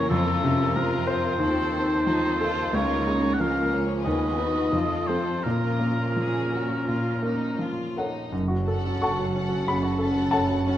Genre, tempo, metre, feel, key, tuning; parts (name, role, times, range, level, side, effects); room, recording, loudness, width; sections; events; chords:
classical, romantic movement for piano and orchestra; 80-93 BPM; 4/4; rubato; Bb minor; A4 = 440 Hz
clear grand piano; melody; 0.0-10.8 s; Db2 to C#6; -25 LUFS; left 1 dB
rich chamber violin section; second line; 0.0-10.8 s; C4 to Db5; -33 LUFS; left 4 dB
warm oboe; second line; 0.0-8.0 s; A4 to Gb5; -29 LUFS; right 1 dB
dark symphonic viola section; accompaniment; 0.0-10.8 s; Eb3 to Db4; -31 LUFS; equal
warm symphonic cello section; bass; 0.0-10.8 s; Db2 to Bb2; -32 LUFS; right 2 dB
rich symphonic double bass section; bass; 8.3-10.8 s; F#1; -32 LUFS; right 3 dB
warm symphonic violin section; melody; 8.7-10.8 s; F#5; -38 LUFS; left 3 dB
wet recital hall reverb, RT60 1.4 s; -22 LUFS; side -12 dB against mid
0.0-8.3 A section; 8.3-10.8 B section
0.1 F; 1.4 F7/Eb; 2.7 Bbm/Db; 4.1 B/D#; 4.7 F7; 5.4 Bbm; 8.3 F#m